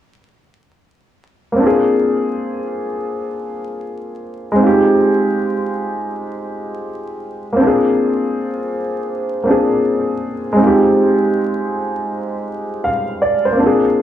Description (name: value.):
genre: hip hop.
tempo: 80 BPM.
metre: 4/4.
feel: swing 62% on 16ths.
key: unclear.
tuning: A4 = 440 Hz.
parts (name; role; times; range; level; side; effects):
warm upright piano; solo; 1.5-14.0 s; Ab3 to F5; -15 LUFS; equal; cassette tape, low-pass filter, tape echo.
room: wet small room reverb, RT60 0.5 s.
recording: worn, warbling old tape, cassette tape, vinyl crackle, warbly pitch drift, small room ambience.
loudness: -14 LUFS.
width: side -11 dB against mid.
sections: 1.6-7.6 A section; 7.6-14.0 B section.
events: none.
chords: 1.6 Bb7; 4.6 Fm9/Ab; 7.6 Bb7; 10.6 Fm9/Ab.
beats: | 1.58 2.33 3.08 3.83 | 4.58 5.33 6.08 6.83 | 7.58 8.33 9.08 9.83 | 10.58 11.33 12.08 12.83 | 13.58.